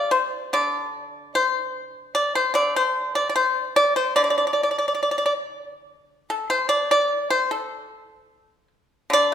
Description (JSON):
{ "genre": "chinese traditional, Chinese solo plucked strings", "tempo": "74 BPM", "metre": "2/4", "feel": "rubato", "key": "unclear", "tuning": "A4 = 437 Hz", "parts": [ { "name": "pipa", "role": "solo", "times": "0.0-9.3 s", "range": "D3 to D5", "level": "-20 LUFS", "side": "equal", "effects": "none" } ], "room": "moderate recital hall reverb, RT60 1.5 s", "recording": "recorded in a church or concert hall", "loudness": "-20 LUFS", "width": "side -9 dB against mid", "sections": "0.0-5.9 A section; 5.9-9.3 B section", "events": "none", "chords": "none", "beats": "0.14 | 0.97 1.78 | 2.58 3.38 | 4.19 5.03 | 5.88 6.71 | 7.51 8.31 | 9.12" }